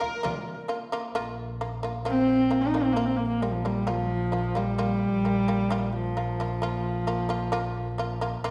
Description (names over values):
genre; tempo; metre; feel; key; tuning
mongolian traditional, Mongolian folk; 66 BPM; 4/4; straight; unclear; A4 = 441 Hz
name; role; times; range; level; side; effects
rich horsehead fiddle; melody; 0.0-8.5 s; F3 to Bb4; -29 LUFS; equal; none
hollow large dizi; second line; 0.0-0.7 s; Bb4; -40 LUFS; equal; none
shamisen; arpeggios; 0.0-8.5 s; Bb3 to F4; -34 LUFS; equal; none
frame drum; percussion; 0.0-0.5 s; none; -40 LUFS; equal; none
warm double bass; drone; 1.2-8.5 s; Bb1; -33 LUFS; equal; none
room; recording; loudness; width
wet recital hall reverb, RT60 1.5 s; dark, warm production; -27 LUFS; mono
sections
0.0-1.2 A section; 1.2-8.5 B section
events
none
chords
0.0 Bb5